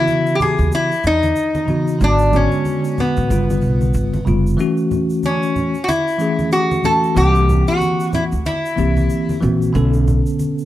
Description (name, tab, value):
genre	hip hop, jazz-hop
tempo	93 BPM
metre	4/4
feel	swing 60% on 16ths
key	F# minor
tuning	A4 = 440 Hz
part	lap resonator guitar	melody	0.0-9.4 s	B3 to A4	-18 LUFS	left 1 dB	analog delay
part	bell-like tine electric piano	accompaniment	0.0-10.7 s	C#3 to F#5	-19 LUFS	left 1 dB	medium stereo tremolo
part	congas and egg shaker	percussion	0.1-10.7 s	none	-27 LUFS	right 2 dB	none
part	upright bass	bass	0.6-10.2 s	F1 to E2	-17 LUFS	equal	none
room	light reverb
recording	none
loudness	-14 LUFS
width	side -14 dB against mid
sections	0.0-4.6 A section; 4.6-10.7 B section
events	none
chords	0.0 C#m9; 2.0 G#m7b5; 3.3 G7#11; 4.6 F#m7; 7.2 C7#11; 9.8 Bm9